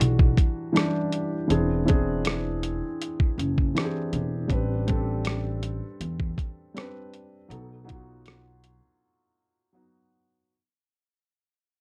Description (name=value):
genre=lo-fi hip hop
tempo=80 BPM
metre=4/4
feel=swing 56% on 16ths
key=unclear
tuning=A4 = 440 Hz
part: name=felt-muted upright piano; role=accompaniment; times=0.0-10.5 s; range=E3 to B4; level=-30 LUFS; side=equal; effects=cassette tape
part: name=upright bass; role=bass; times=0.0-8.8 s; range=E1 to E2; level=-30 LUFS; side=equal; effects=none
part: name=boom bap sampler-style drum kit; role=drums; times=0.0-8.8 s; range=hi-hat, kick drum, rim click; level=-26 LUFS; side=equal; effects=none
room=light reverb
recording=cassette tape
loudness=-26 LUFS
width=mono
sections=0.0-10.5 A section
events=fade-out 0.0-10.5; break 9.0-10.5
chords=0.0 Em9; 1.5 E7b13; 4.5 Am11; 7.5 B7